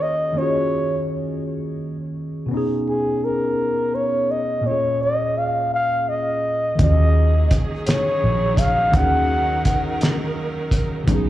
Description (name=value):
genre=slow six-eight R&B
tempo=56 BPM (dotted quarters)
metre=6/8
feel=straight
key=Eb minor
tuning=A4 = 440 Hz
part: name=breathy flugelhorn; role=melody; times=0.0-10.0 s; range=G#4 to Gb5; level=-21 LUFS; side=equal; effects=slapback echo
part: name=tine electric piano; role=accompaniment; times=0.0-11.3 s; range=Bb2 to Ab4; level=-25 LUFS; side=left 1 dB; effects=phaser, slapback echo
part: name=warm studio string section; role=sustained chords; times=6.8-11.3 s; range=Eb3 to Bb4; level=-29 LUFS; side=right 2 dB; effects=none
part: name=vintage muted fingered electric bass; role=bass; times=6.8-11.3 s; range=Bb1 to Eb2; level=-19 LUFS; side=equal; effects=none
part: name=cloth-damped thuddy drum kit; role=drums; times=6.8-11.2 s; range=hi-hat, kick drum, snare drum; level=-20 LUFS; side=equal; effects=none
room=light reverb, small room reverb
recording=live gig heard through the venue's PA, club reverb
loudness=-18 LUFS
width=side -14 dB against mid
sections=0.0-11.3 A section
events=none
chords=0.0 Ebm11; 2.5 B6; 4.6 Bbm7; 6.8 Ebm11